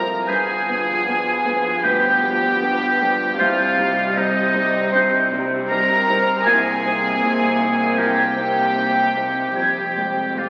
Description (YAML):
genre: cinematic, emotional film score for orchestra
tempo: 78 BPM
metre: 4/4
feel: rubato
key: C minor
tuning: A4 = 440 Hz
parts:
  - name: warm symphonic violin section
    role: melody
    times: 0.0-10.5 s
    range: Eb5 to Bb5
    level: -27 LUFS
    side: equal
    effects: none
  - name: clear studio violin section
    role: second line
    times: 0.0-10.5 s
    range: Eb4 to Bb4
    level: -30 LUFS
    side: equal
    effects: none
  - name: dark symphonic viola section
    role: accompaniment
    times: 0.0-10.5 s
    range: F3 to C4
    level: -30 LUFS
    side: equal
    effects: none
  - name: felt-muted upright piano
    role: accompaniment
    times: 0.0-10.5 s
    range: C2 to C5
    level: -29 LUFS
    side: equal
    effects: none
  - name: mellow French horn section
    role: sustained chords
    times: 0.0-10.5 s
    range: F3 to C4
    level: -32 LUFS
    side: equal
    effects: none
  - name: dark symphonic double bass section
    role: bass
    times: 0.0-10.5 s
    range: F1 to C2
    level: -37 LUFS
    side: equal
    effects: none
  - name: clear clarinet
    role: second line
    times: 0.3-9.8 s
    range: G4 to C5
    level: -30 LUFS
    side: equal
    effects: none
  - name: clear oboe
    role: second line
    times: 0.3-10.5 s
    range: Eb4 to Bb4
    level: -24 LUFS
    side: equal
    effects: none
  - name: mellow large flute ensemble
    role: second line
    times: 0.3-10.5 s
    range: D6 to Ab6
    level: -24 LUFS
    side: equal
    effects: none
  - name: rich symphonic cello section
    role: bass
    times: 0.3-10.5 s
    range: F2 to C3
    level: -35 LUFS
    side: equal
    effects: none
room: wet scoring stage reverb, RT60 2.0 s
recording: very old 78 rpm record, vinyl crackle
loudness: -19 LUFS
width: mono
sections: 0.0-10.5 A section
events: none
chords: 0.3 G; 3.4 Cm; 6.5 Abadd9/C; 9.6 Fmadd9